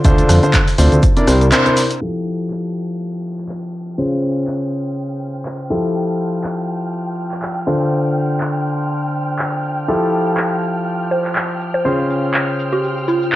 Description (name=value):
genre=piano house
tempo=122 BPM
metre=4/4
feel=swing 56% on 16ths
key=F major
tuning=A4 = 439 Hz
part: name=clear concert grand piano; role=riff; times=0.0-13.4 s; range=C3 to D5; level=-18 LUFS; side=left 1 dB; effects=sidechain pumping, tape echo
part: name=fat analog bass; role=bass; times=0.0-1.5 s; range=C2 to F2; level=-12 LUFS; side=equal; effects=sidechain pumping
part: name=breakbeat sampler-style drum kit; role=drums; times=0.0-2.0 s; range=hi-hat, shaker, snare drum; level=-30 LUFS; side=equal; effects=none
part: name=electronic kick drum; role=drums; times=0.0-1.1 s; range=none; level=-14 LUFS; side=equal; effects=cassette tape
part: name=house drum kit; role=drums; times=0.0-13.4 s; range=crash cymbal, handclaps, hi-hat, rim click, shaker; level=-21 LUFS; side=equal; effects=low-pass filter on hats, cassette tape, low-pass filter on perc, low-pass filter on snare, low-pass filter on cymbals, low-pass filter on room
part: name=warm symphonic violin section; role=sustained chords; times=2.0-13.4 s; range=G5 to F6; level=-28 LUFS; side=right 1 dB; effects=sidechain pumping, low-pass filter
part: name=downlifter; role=sound effects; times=2.3-5.9 s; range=none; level=-46 LUFS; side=equal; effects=none
part: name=mallet-like synth pluck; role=melody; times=11.1-13.2 s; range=F4 to C5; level=-20 LUFS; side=right 1 dB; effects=chorus, phaser, cassette tape
room=light reverb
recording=home recording on cassette, low-pass filter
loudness=-15 LUFS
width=side -15 dB against mid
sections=0.0-2.0 A section; 2.0-13.4 B section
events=band accent 1.5; filter sweep on violin section 2.0-13.4; filter sweep 2.0-13.4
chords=0.0 Dm7; 1.0 C9; 2.0 Fmaj9; 4.0 Dbmaj7; 5.7 Fmaj9; 7.7 Dm7; 9.9 Fmaj9; 11.8 Dbmaj7